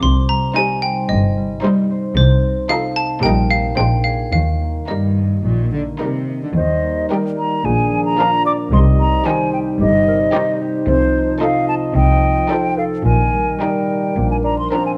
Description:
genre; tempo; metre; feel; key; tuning
cinematic, playful, whimsical film cue; 111 BPM; 4/4; straight; Eb major; A4 = 441 Hz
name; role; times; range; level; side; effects
xylophone with wooden mallets; melody; 0.0-6.0 s; C5 to C6; -23 LUFS; equal; none
concert harp; arpeggios; 0.0-15.0 s; Bb2 to Eb5; -27 LUFS; equal; none
rich studio double bass section; bass; 0.0-14.6 s; G1 to Eb2; -21 LUFS; equal; none
warm studio cello section; bass; 0.0-14.6 s; Eb2 to D3; -23 LUFS; equal; none
dark studio violin section; melody; 0.6-15.0 s; G4 to C5; -30 LUFS; equal; none
warm studio violin section; second line; 0.6-15.0 s; D4 to Eb4; -31 LUFS; equal; none
rich studio viola section; accompaniment; 0.6-15.0 s; Eb3 to Ab3; -26 LUFS; equal; none
dark clarinet; second line; 6.6-15.0 s; G4 to F5; -28 LUFS; equal; none
hollow concert flute; second line; 6.6-14.9 s; C5 to D6; -21 LUFS; equal; none
warm French horn section; sustained chords; 6.6-15.0 s; Eb3 to Eb4; -24 LUFS; equal; none
dark bassoon; accompaniment; 13.6-15.0 s; G3 to D4; -26 LUFS; equal; none
room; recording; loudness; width
light reverb; close, detailed microphones; -17 LUFS; mono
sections
0.0-6.6 A section; 6.6-15.0 A section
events
none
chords
0.0 Cm; 2.2 F7/C; 3.2 Eb/Bb; 3.8 Bb9; 4.3 Eb; 7.6 Bb7; 8.7 Cm; 10.9 F7/C; 13.1 Eb/Bb; 14.2 Bb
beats
| 0.03 0.56 1.10 1.64 | 2.17 2.70 3.23 3.77 | 4.33 4.89 5.45 6.01 | 6.56 7.11 7.65 8.19 | 8.73 9.27 9.81 10.34 | 10.88 11.41 11.96 12.50 | 13.06 13.61 14.16 14.72

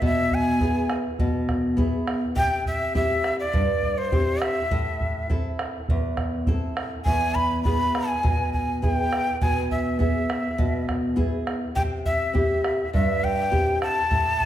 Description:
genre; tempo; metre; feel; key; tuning
andean folk, Andean ensemble; 102 BPM; 4/4; straight; unclear; A4 = 440 Hz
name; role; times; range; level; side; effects
nylon-string guitar; accompaniment; 0.0-14.5 s; E2 to A4; -26 LUFS; equal; none
bombo; percussion; 0.0-14.5 s; none; -26 LUFS; right 1 dB; none
breathy bright quena; melody; 0.1-14.5 s; C5 to B5; -25 LUFS; left 1 dB; none
room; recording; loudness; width
wet recital hall reverb, RT60 1.5 s; recorded in a church or concert hall; -21 LUFS; side -12 dB against mid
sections
0.0-14.5 A section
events
none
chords
0.0 E; 2.4 C; 4.7 Am; 7.1 E; 11.8 C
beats
| 0.03 0.61 1.20 1.78 | 2.37 2.95 3.54 4.12 | 4.71 5.30 5.88 6.47 | 7.06 7.65 8.24 8.82 | 9.41 10.00 10.59 11.18 | 11.77 12.36 12.94 13.53 | 14.12

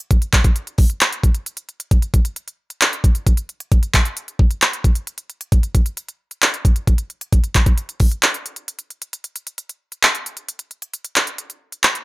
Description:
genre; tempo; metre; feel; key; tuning
hip hop; 133 BPM; 4/4; half-time; none; none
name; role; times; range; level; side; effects
trap drum kit; drums; 0.1-12.0 s; handclaps, hi-hat, kick drum; -15 LUFS; equal; none
room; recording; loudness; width
little or no reverb; none; -16 LUFS; side -21 dB against mid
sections
0.0-9.1 A section; 9.1-12.0 B section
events
break 8.2-9.1, 9.1-12.0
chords
none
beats
| 0.11 0.56 1.01 1.46 | 1.91 2.36 2.81 3.27 | 3.72 4.17 4.62 5.07 | 5.52 5.97 6.42 6.87 | 7.33 7.78 8.23 8.68 | 9.13 9.58 10.03 10.48 | 10.93 11.38 11.84

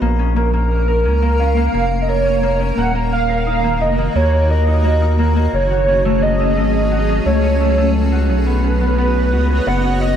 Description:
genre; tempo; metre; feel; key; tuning
IDM; 87 BPM; 4/4; straight; Bb phrygian; A4 = 440 Hz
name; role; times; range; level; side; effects
granular cloud pad; sustained chords; 0.0-10.2 s; Eb3 to D#5; -23 LUFS; right 3 dB; built-in reverb
Celtic harp; arpeggios; 0.0-10.2 s; A3 to Bb4; -20 LUFS; left 4 dB; tape echo
round analog bass; bass; 0.0-10.2 s; Eb1 to Eb2; -17 LUFS; equal; tube saturation
warbly nostalgic lead; melody; 0.4-10.2 s; Bb4 to Gb5; -19 LUFS; right 2 dB; tremolo, ensemble chorus, tape echo
room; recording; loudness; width
light reverb, digital ambience; echo-heavy mix; -14 LUFS; side -9 dB against mid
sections
0.0-10.2 A section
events
none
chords
0.0 Bbm; 2.8 Ebm; 5.5 Gbm6; 8.3 Badd9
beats
| 0.02 0.71 1.40 2.09 | 2.77 3.46 4.16 4.84 | 5.53 6.22 6.91 7.60 | 8.29 8.98 9.67

